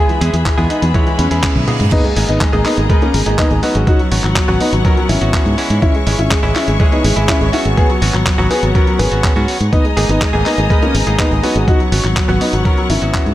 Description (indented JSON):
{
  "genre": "italo disco",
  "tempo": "123 BPM",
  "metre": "4/4",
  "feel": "straight",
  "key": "G# minor",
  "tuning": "A4 = 440 Hz",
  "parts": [
    { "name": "warm grand piano", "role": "melody", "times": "0.0-13.3 s", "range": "E3 to B4", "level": "-18 LUFS", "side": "left 1 dB", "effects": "tape echo" },
    { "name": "clear symphonic string section", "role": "sustained chords", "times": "0.0-13.3 s", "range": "B3 to D#6", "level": "-23 LUFS", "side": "left 2 dB", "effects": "none" },
    { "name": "direct-recorded clean electric guitar", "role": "stabs", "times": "0.0-13.3 s", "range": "E3 to C#5", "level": "-22 LUFS", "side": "right 2 dB", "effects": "none" },
    { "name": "dusty soul sampler-style drum kit", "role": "drums", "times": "0.1-13.3 s", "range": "crash cymbal, handclaps, hi-hat, toms", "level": "-21 LUFS", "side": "equal", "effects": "none" },
    { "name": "fingered electric bass", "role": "bass", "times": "0.2-13.3 s", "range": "G#1 to G#2", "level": "-16 LUFS", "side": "equal", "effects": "tube saturation" },
    { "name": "electronic kick drum", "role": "drums", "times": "0.5-13.2 s", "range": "none", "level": "-15 LUFS", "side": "equal", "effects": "none" },
    { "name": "reverse cymbal", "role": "sound effects", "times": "1.1-1.9 s", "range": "none", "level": "-28 LUFS", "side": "right 6 dB", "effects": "none" }
  ],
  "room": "little or no reverb",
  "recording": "none",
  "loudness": "-11 LUFS",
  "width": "side -14 dB against mid",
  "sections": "0.0-1.9 A section; 1.9-13.3 B section",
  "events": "reverse cymbal 1.1-1.9; drum fill 1.4-1.9; fade-out 12.3-13.3",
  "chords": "0.0 E; 1.9 G#madd9; 3.9 F#sus4/G#; 5.8 C#m/G#; 7.8 F#sus4/G#; 9.7 G#madd9; 11.7 F#sus4/G#",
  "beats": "0.46 0.95 1.43 | 1.92 2.41 2.90 3.38 | 3.87 4.36 4.85 5.34 | 5.82 6.31 6.80 7.29 | 7.78 8.26 8.75 9.24 | 9.73 10.21 10.70 11.19 | 11.68 12.16 12.65 13.14"
}